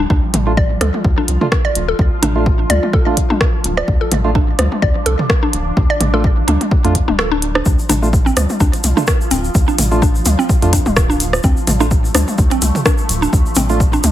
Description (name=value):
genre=minimal techno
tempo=127 BPM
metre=4/4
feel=swing 55% on 16ths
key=D minor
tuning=A4 = 441 Hz
part: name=mallet-like synth pluck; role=riff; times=0.0-14.0 s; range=C4 to D5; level=-20 LUFS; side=equal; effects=chorus, sidechain pumping, digital delay
part: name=rubbery square bass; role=bass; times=0.0-14.1 s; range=D1 to F2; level=-18 LUFS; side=equal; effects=tube saturation, sidechain pumping
part: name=swarming drone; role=texture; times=0.0-14.1 s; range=F3 to F4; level=-25 LUFS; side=right 1 dB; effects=built-in reverb, sidechain pumping
part: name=electronic kick drum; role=drums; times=0.1-13.9 s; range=none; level=-16 LUFS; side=equal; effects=none
part: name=minimal click drum kit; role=drums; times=0.3-14.1 s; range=hi-hat, rim click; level=-18 LUFS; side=equal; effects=overdrive
part: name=garage drum kit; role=percussion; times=0.3-14.1 s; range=rim click, toms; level=-20 LUFS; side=equal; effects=digital delay
part: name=percussive organ stab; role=stabs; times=0.5-13.8 s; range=A3 to F4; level=-22 LUFS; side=right 3 dB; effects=chorus, digital delay
part: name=tube shaker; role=percussion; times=7.7-14.1 s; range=none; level=-25 LUFS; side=left 2 dB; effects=none
room=light reverb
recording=heavily compressed radio sound, multiband compression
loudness=-12 LUFS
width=side -12 dB against mid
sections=0.0-7.7 A section; 7.7-14.1 B section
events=kick drops out 7.2-7.7; drop 7.7-14.1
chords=0.0 Dm